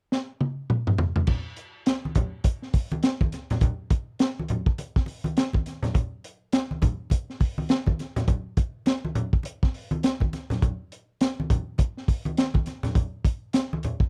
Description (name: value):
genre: funk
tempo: 103 BPM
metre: 4/4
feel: swing 60% on 16ths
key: none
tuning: none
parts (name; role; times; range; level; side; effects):
- crunchy breakbeat drum kit; drums; 0.1-14.1 s; crash cymbal, hi-hat, kick drum, snare drum, toms; -25 LUFS; equal; none
- congas; percussion; 1.3-14.0 s; none; -32 LUFS; equal; none
room: little or no reverb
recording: dry, close 1970s-style studio recording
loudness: -26 LUFS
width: mono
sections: 0.0-1.3 A section; 1.3-14.1 B section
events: drum fill 0.1-1.3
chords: none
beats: 0.12 0.70 | 1.29 1.87 2.45 3.04 | 3.62 4.20 4.78 5.37 | 5.95 6.53 7.12 7.70 | 8.28 8.87 9.45 10.03 | 10.62 11.20 11.78 12.37 | 12.95 13.53